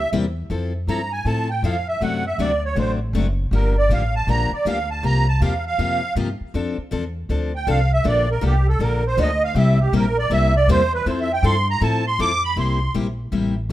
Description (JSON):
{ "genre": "acoustic string swing (jazz manouche)", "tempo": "159 BPM", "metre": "4/4", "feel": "swing 63% on 8ths", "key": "F major", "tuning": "A4 = 441 Hz", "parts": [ { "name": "musette accordion", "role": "melody", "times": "0.0-12.9 s", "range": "G4 to D6", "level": "-22 LUFS", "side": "right 2 dB", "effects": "plate reverb" }, { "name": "upright bass", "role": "bass", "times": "0.0-13.7 s", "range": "F#1 to A2", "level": "-21 LUFS", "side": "equal", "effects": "none" }, { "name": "picked steel-string acoustic guitar", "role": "accompaniment", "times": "0.1-13.7 s", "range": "C3 to A4", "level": "-24 LUFS", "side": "left 4 dB", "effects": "plate reverb" } ], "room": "moderate studio reverb, RT60 0.5 s", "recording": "rough home demo mix", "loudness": "-18 LUFS", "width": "side -14 dB against mid", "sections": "0.5-12.6 A section; 12.6-13.7 A section", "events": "accordion solo 0.5-13.7", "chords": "0.0 C7; 0.5 Fmaj7; 2.0 D7; 3.5 Gm7; 5.0 C7sus4; 6.5 F6; 8.0 Bbmaj7; 9.6 C7; 11.1 Fmaj7; 12.6 C7", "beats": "0.13 | 0.51 0.88 1.26 1.64 | 2.01 2.39 2.77 3.15 | 3.52 3.90 4.28 4.65 | 5.03 5.41 5.79 6.16 | 6.54 6.92 7.29 7.67 | 8.05 8.43 8.80 9.18 | 9.56 9.93 10.31 10.69 | 11.06 11.44 11.82 12.19 | 12.57 12.95 13.32 13.70" }